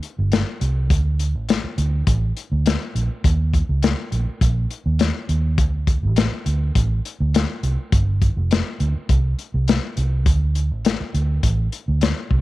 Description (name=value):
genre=straight-eighth soul blues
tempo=103 BPM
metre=4/4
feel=straight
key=unclear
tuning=A4 = 440 Hz
part: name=crunchy breakbeat drum kit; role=drums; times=0.0-12.4 s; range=hi-hat, kick drum, snare drum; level=-20 LUFS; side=left 2 dB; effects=none
part: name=vintage muted fingered electric bass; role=bass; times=0.2-12.4 s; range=F1 to Eb2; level=-19 LUFS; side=right 1 dB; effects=none
room=little or no reverb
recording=1960s-style stereo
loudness=-18 LUFS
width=side -17 dB against mid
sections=0.0-12.4 A section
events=none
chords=none